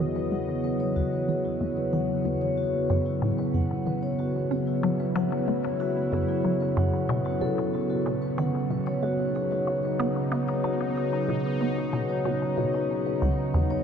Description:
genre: ambient, sequencer-driven space music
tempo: 93 BPM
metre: 4/4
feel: straight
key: unclear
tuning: A4 = 439 Hz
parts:
  - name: sweeping resonant pad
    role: sustained chords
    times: 0.0-13.8 s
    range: E2 to D#5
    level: -28 LUFS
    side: right 2 dB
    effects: chorus, shimmer reverb
  - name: vibraphone with soft mallets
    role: arpeggios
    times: 0.0-13.8 s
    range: D#4 to F#5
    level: -29 LUFS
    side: left 3 dB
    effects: auto-pan, ping-pong delay, shimmer reverb
  - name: resonant blip pluck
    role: riff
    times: 0.0-13.6 s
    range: C#2 to F#4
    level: -30 LUFS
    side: equal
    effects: phaser, ping-pong delay, shimmer reverb
room: wet huge ambient reverb, RT60 8.3 s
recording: dark, warm production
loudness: -24 LUFS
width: side -7 dB against mid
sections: 0.0-13.8 A section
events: filter sweep on synth arpeggio sound 0.0-13.8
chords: 0.0 Emaj7; 2.9 F#m7; 8.1 B; 13.2 C#m7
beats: | 0.32 0.96 1.61 2.25 | 2.90 3.54 4.19 4.83 | 5.48 6.12 6.77 7.41 | 8.06 8.71 9.35 9.99 | 10.64 11.29 11.93 12.58 | 13.22

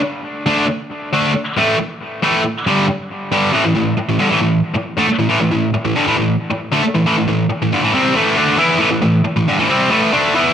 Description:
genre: rock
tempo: 137 BPM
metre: 4/4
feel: straight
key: A minor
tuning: A4 = 440 Hz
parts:
  - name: high-gain distorted guitar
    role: solo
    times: 0.5-10.5 s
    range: G2 to E4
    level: -13 LUFS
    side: equal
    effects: distortion, analog delay
room: wet large studio reverb, RT60 0.9 s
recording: none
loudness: -13 LUFS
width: side -9 dB against mid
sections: 0.0-3.5 A section; 3.5-10.5 B section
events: none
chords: 0.0 D5; 1.6 A5; 2.7 G5; 3.5 A5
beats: | 0.03 0.47 0.91 1.35 | 1.79 2.23 2.67 3.11 | 3.55 3.99 4.42 4.86 | 5.30 5.74 6.18 6.62 | 7.06 7.50 7.93 8.37 | 8.81 9.25 9.69 10.13

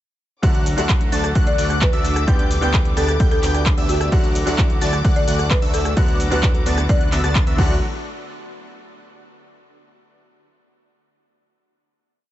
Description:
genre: EDM, festival progressive house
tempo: 130 BPM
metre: 4/4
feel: straight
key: D major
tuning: A4 = 440 Hz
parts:
  - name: clear baby grand piano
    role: accompaniment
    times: 0.4-7.8 s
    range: D3 to G4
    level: -28 LUFS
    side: equal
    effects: sidechain pumping, ping-pong delay
  - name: dark studio string section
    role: sustained chords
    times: 0.4-7.8 s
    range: D3 to D6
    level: -32 LUFS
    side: left 2 dB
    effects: sidechain pumping
  - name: plucky unison lead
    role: arpeggios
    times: 0.4-7.8 s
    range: E6 to A6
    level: -30 LUFS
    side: left 1 dB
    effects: sidechain pumping, ping-pong delay
  - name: supersaw stab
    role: riff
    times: 0.4-7.8 s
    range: A3 to A5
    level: -27 LUFS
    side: equal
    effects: phaser, vintage 12-bit sampler grit, sidechain pumping, ping-pong delay
  - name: fat analog bass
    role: bass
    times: 0.4-7.8 s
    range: D2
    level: -23 LUFS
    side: equal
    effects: sidechain pumping
  - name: big-room dance drum kit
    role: drums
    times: 0.4-7.7 s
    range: crash cymbal, handclaps, hi-hat, rim click, shaker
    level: -27 LUFS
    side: equal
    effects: none
  - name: electronic kick drum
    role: drums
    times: 0.4-7.7 s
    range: none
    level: -18 LUFS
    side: equal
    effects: overdrive
  - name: folk marimba with medium hard mallets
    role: melody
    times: 1.5-7.5 s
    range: F#4 to D5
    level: -28 LUFS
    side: equal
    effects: ping-pong delay
room: little or no reverb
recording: nothing above 8.0 kHz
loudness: -15 LUFS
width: side -13 dB against mid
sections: 0.4-7.8 drop; 7.8-9.7 final hit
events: drop 0.4-7.8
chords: 0.4 D; 2.3 G/D; 4.1 D; 6.0 Bm/D; 7.6 D; 7.8 N.C.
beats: | 0.43 0.89 1.35 1.81 | 2.28 2.74 3.20 3.66 | 4.12 4.58 5.05 5.51 | 5.97 6.43 6.89 7.35 | 7.82

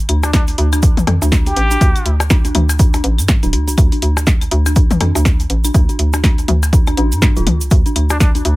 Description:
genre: minimal techno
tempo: 122 BPM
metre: 4/4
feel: swing 59% on 16ths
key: D minor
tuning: A4 = 444 Hz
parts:
  - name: dark detuned synth bell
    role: riff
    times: 0.1-8.5 s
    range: D4 to F4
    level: -24 LUFS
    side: left 1 dB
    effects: chorus, sidechain pumping, dub echo
  - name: hollow knocking FM bass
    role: bass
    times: 0.1-8.6 s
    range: D1 to G2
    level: -16 LUFS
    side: equal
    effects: sidechain pumping
  - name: techno drum kit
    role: drums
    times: 0.1-8.6 s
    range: hi-hat, snare drum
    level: -20 LUFS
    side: equal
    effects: overdrive
  - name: electronic claves, percussion blips and toms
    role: percussion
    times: 0.1-8.2 s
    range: none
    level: -20 LUFS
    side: left 4 dB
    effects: dub echo
  - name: trumpet with plunger mute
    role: melody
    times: 0.2-2.1, 8.1-8.3 s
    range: D4 to G4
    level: -22 LUFS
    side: left 1 dB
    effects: dub echo
  - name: cabasa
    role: percussion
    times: 0.2-8.4 s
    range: none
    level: -26 LUFS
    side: right 3 dB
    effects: none
  - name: electronic kick drum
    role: drums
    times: 0.3-8.3 s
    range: none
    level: -13 LUFS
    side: equal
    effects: overdrive
room: little or no reverb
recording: none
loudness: -11 LUFS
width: side -19 dB against mid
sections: 0.0-8.6 A section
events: none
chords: none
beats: 0.34 0.83 1.32 | 1.81 2.30 2.79 3.29 | 3.78 4.27 4.76 5.25 | 5.75 6.24 6.73 7.22 | 7.71 8.20

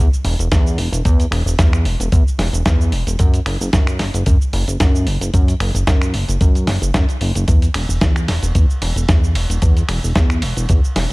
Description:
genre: nu-disco, nu disco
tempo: 112 BPM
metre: 4/4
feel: swing 54% on 16ths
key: unclear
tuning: A4 = 440 Hz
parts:
  - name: chorused synth bass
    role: bass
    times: 0.0-11.1 s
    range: E1 to F#2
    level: -18 LUFS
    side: equal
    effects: none
  - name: dusty soul sampler-style drum kit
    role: drums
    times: 0.1-11.1 s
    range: cabasa, finger snaps, hi-hat, ride cymbal, snare drum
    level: -22 LUFS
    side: equal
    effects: none
  - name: electronic kick drum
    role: drums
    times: 0.5-10.8 s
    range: none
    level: -14 LUFS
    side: equal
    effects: none
room: little or no reverb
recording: none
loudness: -14 LUFS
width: side -24 dB against mid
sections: 0.0-11.1 A section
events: none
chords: none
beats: 0.52 | 1.05 1.59 2.12 2.66 | 3.20 3.73 4.27 4.80 | 5.34 5.88 6.41 6.95 | 7.48 8.02 8.55 9.09 | 9.62 10.16 10.70

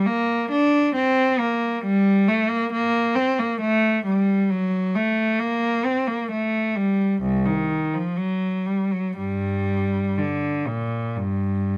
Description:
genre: classical, baroque-style suite movement for unaccompanied cello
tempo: 58-68 BPM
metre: 4/4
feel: rubato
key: G minor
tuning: A4 = 440 Hz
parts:
  - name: rich cello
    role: solo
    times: 0.0-11.8 s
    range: C2 to D4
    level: -22 LUFS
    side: equal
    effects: none
room: little or no reverb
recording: close, detailed microphones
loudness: -22 LUFS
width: mono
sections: 0.0-11.8 A section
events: none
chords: none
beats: 0.06 0.95 | 1.83 2.72 3.61 4.49 | 5.39 6.31 7.22 8.17 | 9.17 10.18 11.16

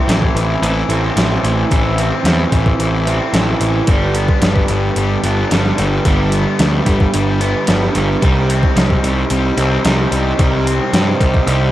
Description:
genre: indie rock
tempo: 111 BPM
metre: 4/4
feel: straight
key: G major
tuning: A4 = 440 Hz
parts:
  - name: combo organ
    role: sustained chords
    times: 0.0-11.7 s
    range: G4 to C6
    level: -29 LUFS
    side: right 5 dB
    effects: none
  - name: crunchy overdriven guitar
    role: riff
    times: 0.0-11.7 s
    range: G2 to E4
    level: -20 LUFS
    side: right 6 dB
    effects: lush chorus, analog delay
  - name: raw garage guitar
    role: riff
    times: 0.0-11.7 s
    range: E3 to C4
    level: -21 LUFS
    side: left 8 dB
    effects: overdrive
  - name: fuzz picked electric bass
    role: bass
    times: 0.1-11.7 s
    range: G1 to G2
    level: -16 LUFS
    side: equal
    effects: overdrive
  - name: crisp 8-bit digital drum machine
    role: drums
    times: 0.1-11.6 s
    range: hi-hat, kick drum, snare drum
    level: -16 LUFS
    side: equal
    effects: overdrive, cassette tape
room: light reverb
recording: home recording on cassette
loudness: -12 LUFS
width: side -14 dB against mid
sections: 0.0-11.7 A section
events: none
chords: 0.0 Am; 3.9 G; 8.2 Cm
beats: 0.09 0.63 1.18 | 1.72 2.26 2.80 3.35 | 3.89 4.43 4.97 5.51 | 6.06 6.60 7.14 7.68 | 8.23 8.77 9.31 9.86 | 10.40 10.94 11.49

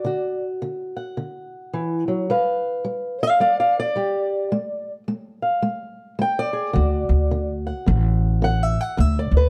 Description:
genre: acoustic country blues, solo or duo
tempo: 108 BPM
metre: 4/4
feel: swing 60% on 8ths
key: unclear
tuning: A4 = 440 Hz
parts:
  - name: fingerpicked old ladder-braced acoustic guitar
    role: melody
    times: 0.0-9.5 s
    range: D3 to G5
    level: -24 LUFS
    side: equal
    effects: none
  - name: upright bass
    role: bass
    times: 6.8-9.5 s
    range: A1 to D2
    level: -21 LUFS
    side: equal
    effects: none
room: moderate small room reverb, RT60 0.5 s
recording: dark, warm production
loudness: -22 LUFS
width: mono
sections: 0.0-9.5 A section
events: steel-string acoustic guitar solo 0.0-9.5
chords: 0.0 D; 2.3 G7; 4.5 Fm6/Ab; 6.8 D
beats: | 0.06 0.61 1.17 1.73 | 2.29 2.84 3.40 3.96 | 4.52 5.08 5.64 6.19 | 6.75 7.31 7.87 8.43 | 8.98

